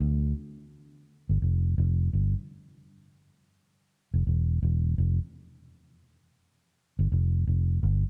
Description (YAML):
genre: reggae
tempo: 84 BPM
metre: 4/4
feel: swing 63% on 16ths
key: unclear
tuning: A4 = 437 Hz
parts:
  - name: fingered electric bass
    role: solo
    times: 0.0-8.0 s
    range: E1 to D2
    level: -27 LUFS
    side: equal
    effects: none
room: little or no reverb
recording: dry, close 1970s-style studio recording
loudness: -28 LUFS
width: mono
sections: 0.0-1.1 A section; 1.1-8.1 B section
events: none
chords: none